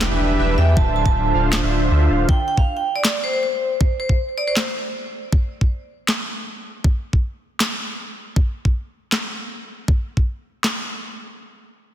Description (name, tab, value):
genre	future bass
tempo	158 BPM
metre	4/4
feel	half-time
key	D dorian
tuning	A4 = 440 Hz
part	soft supersaw	riff	0.0-2.3 s	D3 to G5	-21 LUFS	right 1 dB	sidechain pumping, low-pass filter, ping-pong delay
part	saturated sub bass	bass	0.0-2.2 s	D1 to E2	-18 LUFS	equal	sidechain pumping
part	electronic snare drum and handclaps	drums	0.0-10.7 s	none	-23 LUFS	equal	soft clipping on snare
part	impact	sound effects	0.0-0.8 s	none	-31 LUFS	equal	none
part	vibraphone with hard mallets	melody	0.6-4.6 s	C5 to A5	-23 LUFS	right 2 dB	sidechain pumping, ping-pong delay
part	electronic kick drum	drums	0.8-10.2 s	none	-17 LUFS	equal	none
room	light reverb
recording	dense, heavily limited modern master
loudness	-18 LUFS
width	side -11 dB against mid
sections	0.0-11.4 A section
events	impact 0.0-0.8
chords	0.0 Em7; 0.8 Dm7; 2.3 N.C.